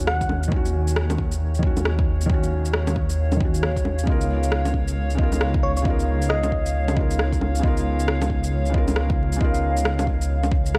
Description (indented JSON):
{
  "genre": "future garage",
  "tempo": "135 BPM",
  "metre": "4/4",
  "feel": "swing 62% on 16ths",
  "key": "unclear",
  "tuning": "A4 = 440 Hz",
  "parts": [
    { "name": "felt-muted upright piano", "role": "accompaniment", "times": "0.0-10.8 s", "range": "Db3 to Bb4", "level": "-30 LUFS", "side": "equal", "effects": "vintage 12-bit sampler grit, sidechain pumping, analog delay" },
    { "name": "warbly tape-like pad", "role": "sustained chords", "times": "0.0-10.8 s", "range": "Db5 to Gb5", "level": "-34 LUFS", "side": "equal", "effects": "chorus, built-in reverb, phaser, sidechain pumping" },
    { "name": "dark detuned saw bass", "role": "bass", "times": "0.0-10.8 s", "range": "Db2 to Eb2", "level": "-26 LUFS", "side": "equal", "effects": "tube saturation, sidechain pumping" },
    { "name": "soft struck synth lead", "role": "melody", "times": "0.1-0.4, 5.6-6.9 s", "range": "Db5 to Gb5", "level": "-31 LUFS", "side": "equal", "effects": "chorus, analog delay" },
    { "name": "electronic rim click, shaker and bongos", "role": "drums", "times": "0.1-10.8 s", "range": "none", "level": "-29 LUFS", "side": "equal", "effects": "overdrive" },
    { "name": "electronic kick drum", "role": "drums", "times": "0.2-10.6 s", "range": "none", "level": "-26 LUFS", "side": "equal", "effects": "overdrive" }
  ],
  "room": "light reverb",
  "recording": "vinyl crackle",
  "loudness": "-22 LUFS",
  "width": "mono",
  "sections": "0.0-10.8 A section",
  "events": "none",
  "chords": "0.0 Ebm7; 4.1 Db13"
}